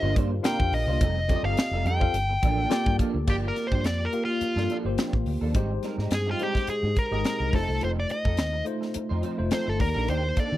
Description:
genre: polished 1980s jazz-funk pop.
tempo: 106 BPM.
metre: 4/4.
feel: swing 54% on 16ths.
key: G minor.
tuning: A4 = 439 Hz.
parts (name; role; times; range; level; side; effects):
nasal lead guitar with a parked wah; melody; 0.0-10.6 s; F4 to G5; -28 LUFS; left 1 dB; overdrive, slapback echo.
tine electric piano; accompaniment; 0.0-10.6 s; D3 to F5; -31 LUFS; left 3 dB; medium stereo tremolo, wide subtle chorus.
electric guitar at the edge of break-up; riff; 0.0-10.6 s; Eb3 to C5; -34 LUFS; right 5 dB; ensemble chorus.
vintage muted fingered electric bass; bass; 0.0-10.6 s; F1 to Eb3; -28 LUFS; equal; none.
crisp fusion drum kit; drums; 0.2-10.5 s; crash cymbal, hi-hat, kick drum, snare drum; -26 LUFS; equal; none.
room: little or no reverb.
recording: dry, close 1970s-style studio recording.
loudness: -23 LUFS.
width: side -14 dB against mid.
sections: 0.0-3.3 A section; 3.3-10.6 B section.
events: lead electric guitar solo 3.3-10.6.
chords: 0.0 Gm7; 1.0 F9; 2.1 Gm9; 3.3 Gm7; 5.5 Abmaj7; 7.5 F7; 9.8 Ebmaj7.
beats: 0.45 | 1.01 1.58 2.14 2.71 | 3.28 3.84 4.41 4.98 | 5.54 6.11 6.68 7.25 | 7.82 8.38 8.95 9.52 | 10.09.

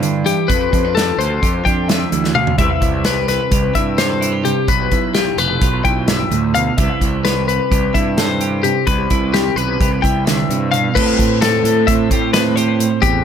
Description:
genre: math rock and midwest emo.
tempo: 258 BPM (eighths).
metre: 9/8.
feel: straight.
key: C major.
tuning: A4 = 445 Hz.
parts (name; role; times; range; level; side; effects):
twelve-string electric guitar; accompaniment; 0.0-13.2 s; G2 to B4; -20 LUFS; right 10 dB; spring reverb.
fuzz picked electric bass; bass; 0.0-13.2 s; F1 to A2; -20 LUFS; equal; overdrive.
modern studio drum kit; drums; 0.0-13.1 s; crash cymbal, hi-hat, kick drum, snare drum, toms; -19 LUFS; equal; none.
twelve-string electric guitar; arpeggios; 0.3-13.2 s; G4 to G5; -18 LUFS; left 10 dB; analog delay.
room: little or no reverb.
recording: none.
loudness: -13 LUFS.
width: side -8 dB against mid.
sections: 0.0-11.0 A section; 11.0-13.2 B section.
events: drum fill 2.2-2.6.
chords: 0.5 F69; 2.6 Cmaj7; 4.7 G13; 6.8 Cmaj7; 8.9 Cmaj9; 11.0 Am7.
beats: 0.02 0.26 | 0.49 0.72 0.95 1.19 1.42 1.65 1.89 2.12 2.35 | 2.58 2.82 3.05 3.28 3.52 3.75 3.98 4.22 4.45 | 4.68 4.92 5.15 5.38 5.62 5.85 6.08 6.32 6.55 | 6.78 7.02 7.25 7.48 7.71 7.95 8.18 8.41 8.65 | 8.88 9.11 9.34 9.57 9.80 10.04 10.27 10.50 10.73 | 10.96 11.19 11.42 11.65 11.88 12.11 12.34 12.57 12.80 | 13.03.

